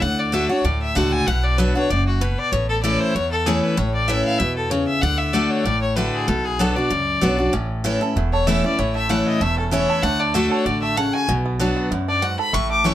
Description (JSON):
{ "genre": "bluegrass", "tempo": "192 BPM", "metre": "4/4", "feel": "swing 54% on 8ths", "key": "A major", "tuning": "A4 = 441 Hz", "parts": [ { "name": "clear fiddle", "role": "melody", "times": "0.0-12.9 s", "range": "F#4 to D6", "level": "-23 LUFS", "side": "left 3 dB", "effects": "none" }, { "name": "picked steel-string acoustic guitar", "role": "accompaniment", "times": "0.0-12.9 s", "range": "E2 to F#4", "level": "-21 LUFS", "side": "left 1 dB", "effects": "none" }, { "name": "upright bass", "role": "bass", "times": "0.0-12.9 s", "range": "E1 to F#2", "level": "-24 LUFS", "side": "right 1 dB", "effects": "none" }, { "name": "bluegrass banjo", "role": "melody", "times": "7.5-12.9 s", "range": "A3 to A4", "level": "-28 LUFS", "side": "right 9 dB", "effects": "none" } ], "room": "light reverb", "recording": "close, detailed microphones", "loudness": "-18 LUFS", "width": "side -12 dB against mid", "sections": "0.0-12.9 A section", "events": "none", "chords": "0.0 D; 1.3 Bm; 2.5 A; 5.0 D; 6.3 Bm; 7.5 A; 10.0 D; 11.3 Bm" }